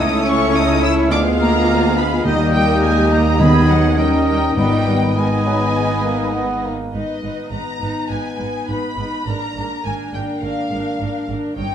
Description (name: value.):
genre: quick classical-period movement for symphony orchestra.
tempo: 103 BPM.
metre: 4/4.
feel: straight.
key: G# minor.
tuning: A4 = 440 Hz.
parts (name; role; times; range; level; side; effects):
rich studio violin section; melody; 0.0-11.7 s; D#5 to E6; -25 LUFS; left 1 dB; none.
clear oboe; second line; 0.0-6.6 s; C#5 to F5; -26 LUFS; right 1 dB; none.
mellow clarinet; second line; 0.0-6.6 s; A#3 to C#4; -24 LUFS; left 1 dB; none.
mellow flute section; second line; 0.0-6.6 s; A#5 to G#6; -28 LUFS; left 1 dB; none.
warm studio violin section; second line; 0.0-11.7 s; Ab4 to B5; -26 LUFS; left 4 dB; none.
rich studio viola section; accompaniment; 0.0-11.7 s; A3 to C#5; -25 LUFS; right 2 dB; none.
warm bassoon; accompaniment; 0.0-6.9 s; D#3 to B3; -26 LUFS; right 2 dB; none.
warm French horn section; sustained chords; 0.0-11.7 s; G3 to F4; -23 LUFS; left 4 dB; none.
rich studio double bass section; bass; 0.0-11.7 s; G1 to D#2; -23 LUFS; right 3 dB; none.
rich symphonic cello section; bass; 0.0-11.7 s; G2 to E4; -24 LUFS; right 2 dB; none.
timpani; percussion; 2.2-5.4 s; G#2 to D#3; -21 LUFS; equal; none.
room: wet recital hall reverb, RT60 1.4 s.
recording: dark, warm production.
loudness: -15 LUFS.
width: side -9 dB against mid.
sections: 0.0-6.9 A section; 6.9-11.7 B section.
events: none.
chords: 0.0 A/C#; 1.1 Ddim7; 2.3 D#; 3.4 G#m/D#; 4.0 D#7; 4.6 G#m; 9.3 A#7/G#.